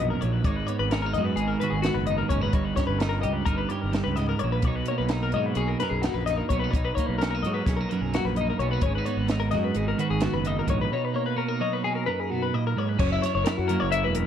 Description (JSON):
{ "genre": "math rock and midwest emo", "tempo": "258 BPM (eighths)", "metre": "9/8", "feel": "straight", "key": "B major", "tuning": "A4 = 440 Hz", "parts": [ { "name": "twelve-string electric guitar", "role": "accompaniment", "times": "0.0-14.3 s", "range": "F#2 to C#5", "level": "-28 LUFS", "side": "right 5 dB", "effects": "none" }, { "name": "twelve-string electric guitar", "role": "arpeggios", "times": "0.0-14.3 s", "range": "F#4 to E5", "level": "-28 LUFS", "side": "left 8 dB", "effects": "spring reverb" }, { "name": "fuzz fingered electric bass", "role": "bass", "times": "0.0-14.2 s", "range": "E1 to G#2", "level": "-29 LUFS", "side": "equal", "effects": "overdrive" }, { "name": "compact cocktail drum kit", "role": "drums", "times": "0.2-14.3 s", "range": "crash cymbal, hi-hat, kick drum, snare drum", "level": "-28 LUFS", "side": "equal", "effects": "none" } ], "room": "small room ambience", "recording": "dry, close 1970s-style studio recording", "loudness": "-23 LUFS", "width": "side -9 dB against mid", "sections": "0.0-13.0 A section; 13.0-14.3 B section", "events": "none", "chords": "0.5 G#m7; 2.5 D#7/G; 4.6 Bmaj7; 8.8 G#m7; 13.0 F#7" }